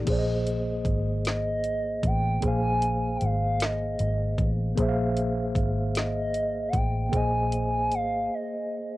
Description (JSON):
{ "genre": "slow six-eight R&B", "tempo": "51 BPM (dotted quarters)", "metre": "6/8", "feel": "straight", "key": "unclear", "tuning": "A4 = 440 Hz", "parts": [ { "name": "mellow tine electric piano", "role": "accompaniment", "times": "0.0-9.0 s", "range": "Bb3 to F5", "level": "-30 LUFS", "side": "equal", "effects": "medium stereo tremolo, cassette tape" }, { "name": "vintage muted fingered electric bass", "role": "bass", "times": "0.0-8.3 s", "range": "Ab1 to Bb1", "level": "-28 LUFS", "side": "equal", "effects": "none" }, { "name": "smooth R&B drum kit", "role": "drums", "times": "0.1-8.1 s", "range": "crash cymbal, hi-hat, kick drum, snare drum", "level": "-29 LUFS", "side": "equal", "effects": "cassette tape" }, { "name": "gliding portamento lead", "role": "melody", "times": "1.3-9.0 s", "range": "Eb5 to Ab5", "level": "-29 LUFS", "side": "equal", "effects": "chorus, cassette tape, analog delay" } ], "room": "light reverb", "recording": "home recording on cassette", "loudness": "-24 LUFS", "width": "side -18 dB against mid", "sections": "0.1-9.0 A section", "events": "break 8.3-9.0", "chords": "0.1 Bb9sus4" }